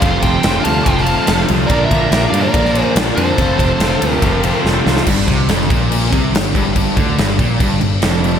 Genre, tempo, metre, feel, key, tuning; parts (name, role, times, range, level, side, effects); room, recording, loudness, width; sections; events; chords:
classic rock; 143 BPM; 4/4; straight; A4 = 439 Hz
dark smooth lead guitar; melody; 0.0-4.6 s; C5 to A5; -20 LUFS; right 1 dB; overdrive
octave-fuzz lead guitar; second line; 0.0-4.6 s; A4 to F5; -24 LUFS; right 2 dB; distortion
picked plugged-in twelve-string acoustic guitar; accompaniment; 0.0-5.1 s; Bb2 to Bb4; -27 LUFS; equal
overdriven tonewheel organ; sustained chords; 0.0-5.1, 8.1-8.4 s; C4 to D5; -29 LUFS; equal
distorted electric guitar; riff; 0.0-8.4 s; F2 to D4; -20 LUFS; right 9 dB; distortion, slapback echo
sludgy distorted guitar; riff; 0.0-8.4 s; F2 to F4; -19 LUFS; left 8 dB; overdrive
modern bright picked electric bass; bass; 0.0-8.4 s; F1 to G2; -19 LUFS; equal
big rock drum kit; drums; 0.0-8.3 s; crash cymbal, kick drum, ride cymbal, snare drum; -17 LUFS; equal
moderate scoring stage reverb, RT60 2.1 s; big arena sound; -12 LUFS; side -8 dB against mid
0.0-5.1 A section; 5.1-8.4 B section
drum fill 4.7-5.1
0.0 F; 1.7 Bb; 3.4 F; 5.1 G5